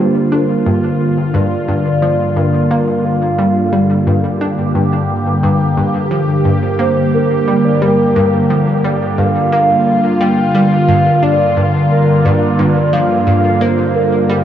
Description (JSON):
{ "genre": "ambient, sequencer-driven space music", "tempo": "88 BPM", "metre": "4/4", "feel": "straight", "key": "G minor", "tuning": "A4 = 441 Hz", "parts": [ { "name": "soft octave-layered synth lead", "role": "melody", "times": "0.0-14.4 s", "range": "G4 to G5", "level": "-17 LUFS", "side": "right 1 dB", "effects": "chorus, phaser, tape echo" }, { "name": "phased analog pad", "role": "sustained chords", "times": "0.0-14.4 s", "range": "G2 to G4", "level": "-14 LUFS", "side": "equal", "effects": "phaser, chorus" }, { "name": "analog pluck", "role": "riff", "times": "0.0-14.4 s", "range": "G2 to D4", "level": "-17 LUFS", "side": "equal", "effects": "chorus, tape echo" } ], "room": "wet huge ambient reverb, RT60 7.5 s", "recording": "worn, warbling old tape, cassette tape, warbly pitch drift, small room ambience", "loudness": "-11 LUFS", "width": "side -10 dB against mid", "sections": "0.0-14.4 A section", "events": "none", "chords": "0.0 Gm7" }